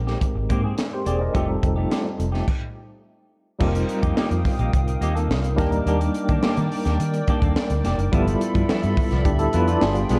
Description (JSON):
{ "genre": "polished 1980s jazz-funk pop", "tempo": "106 BPM", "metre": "4/4", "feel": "straight", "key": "unclear", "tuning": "A4 = 440 Hz", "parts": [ { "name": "barky tine electric piano", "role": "accompaniment", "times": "0.0-10.2 s", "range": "G3 to Eb5", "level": "-27 LUFS", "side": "equal", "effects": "fast tremolo, analog chorus" }, { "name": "vintage muted fingered electric bass", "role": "bass", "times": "0.0-10.2 s", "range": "E1 to Eb3", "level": "-26 LUFS", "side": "equal", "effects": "none" }, { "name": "semi-hollow electric guitar", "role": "riff", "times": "0.1-10.2 s", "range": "F3 to A4", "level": "-32 LUFS", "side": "equal", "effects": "lush chorus" }, { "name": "crisp fusion drum kit", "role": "drums", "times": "0.1-10.2 s", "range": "crash cymbal, hi-hat, kick drum, snare drum", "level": "-27 LUFS", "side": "equal", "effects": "none" }, { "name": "hollow soft pad", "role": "sustained chords", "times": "3.6-10.2 s", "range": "Ab4 to Eb6", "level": "-34 LUFS", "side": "equal", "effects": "chorus" } ], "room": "moderate plate reverb, RT60 1.9 s", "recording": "dreamy mix soaked in reverb, cassette tape", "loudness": "-22 LUFS", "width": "mono", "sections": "0.0-3.6 A section; 3.6-10.2 B section", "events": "stop 2.5-3.6", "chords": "0.0 Abmaj9; 1.3 F9; 5.6 Ebmaj7; 8.1 G13", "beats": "0.21 0.78 | 1.34 1.91 2.48 3.04 | 3.60 4.17 4.73 5.30 | 5.86 6.43 6.99 7.56 | 8.12 8.69 9.25 9.81" }